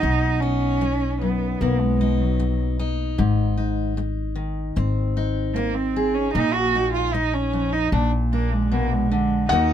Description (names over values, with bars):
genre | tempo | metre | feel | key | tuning
acoustic folk duo or small band | 76 BPM | 4/4 | straight | unclear | A4 = 442 Hz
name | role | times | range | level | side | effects
dark cello | second line | 0.0-9.7 s | F#3 to Gb4 | -23 LUFS | right 4 dB | none
fingerpicked steel-string acoustic guitar | accompaniment | 0.0-9.7 s | Eb2 to Ab4 | -25 LUFS | left 4 dB | none
upright bass | bass | 0.0-9.7 s | Ab1 to Eb2 | -24 LUFS | equal | none
felt-muted upright piano | melody | 9.5-9.7 s | Gb5 | -19 LUFS | left 4 dB | none
room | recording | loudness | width
light reverb | none | -20 LUFS | side -10 dB against mid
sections
0.0-9.5 A section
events
cello solo 0.0-9.5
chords
0.0 B; 3.2 Ab; 6.3 Bbsus4; 7.9 Bb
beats
| 0.03 0.81 1.60 2.39 | 3.18 3.97 4.76 5.55 | 6.34 7.13 7.92 8.71 | 9.50